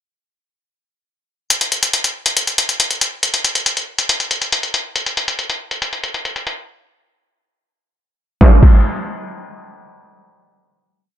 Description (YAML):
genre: hip hop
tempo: 139 BPM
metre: 4/4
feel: half-time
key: none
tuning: none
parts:
  - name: dusty soul sampler-style drum kit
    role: drums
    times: 1.5-8.7 s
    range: crash cymbal, hi-hat, kick drum, snare drum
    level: -14 LUFS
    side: equal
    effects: none
room: light reverb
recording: low-pass filter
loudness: -14 LUFS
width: side -12 dB against mid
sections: 1.5-8.4 breakdown; 8.4-11.2 final hit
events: filter sweep 1.5-8.4; break 6.7-8.4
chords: none